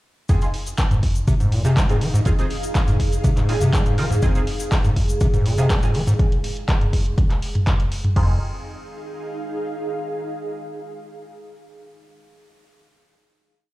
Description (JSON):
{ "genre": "acid house", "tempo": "122 BPM", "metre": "4/4", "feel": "straight", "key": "F minor pentatonic", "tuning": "A4 = 440 Hz", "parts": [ { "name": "overdriven acid bass", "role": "riff", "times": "0.3-8.4 s", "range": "F2 to Ab3", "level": "-21 LUFS", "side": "equal", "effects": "tube saturation, sidechain pumping, analog delay" }, { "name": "band-passed chord stab", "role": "stabs", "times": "0.3-11.1 s", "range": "C4 to Bb4", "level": "-32 LUFS", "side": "right 1 dB", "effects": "phaser, ensemble chorus, cassette tape, analog delay" }, { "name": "booming analog drum machine", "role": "drums", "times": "0.3-8.3 s", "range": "crash cymbal, handclaps, hi-hat, toms", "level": "-25 LUFS", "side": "equal", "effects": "none" }, { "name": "electronic kick drum", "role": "drums", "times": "0.3-8.3 s", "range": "none", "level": "-20 LUFS", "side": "equal", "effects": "overdrive" }, { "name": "loose indie drum kit", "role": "drums", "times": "0.3-6.2 s", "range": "hi-hat, snare drum", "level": "-42 LUFS", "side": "right 2 dB", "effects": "none" }, { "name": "egg shaker", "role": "percussion", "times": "0.3-6.2 s", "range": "none", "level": "-38 LUFS", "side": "left 4 dB", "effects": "none" }, { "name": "ethereal airy pad", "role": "texture", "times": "1.6-11.3 s", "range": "Eb4 to F5", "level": "-30 LUFS", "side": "right 1 dB", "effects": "ensemble chorus, built-in reverb, tremolo, sidechain pumping" }, { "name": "dark analog pad", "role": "sustained chords", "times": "4.6-8.2 s", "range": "Ab4", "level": "-31 LUFS", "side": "right 1 dB", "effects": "chorus, phaser, sidechain pumping" } ], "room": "light reverb, small room ambience", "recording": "played on a big sound system in a bare room, large studio reverb", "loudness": "-18 LUFS", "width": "side -18 dB against mid", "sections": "0.3-8.2 groove; 8.2-12.1 final chord", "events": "none", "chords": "0.3 Fm7" }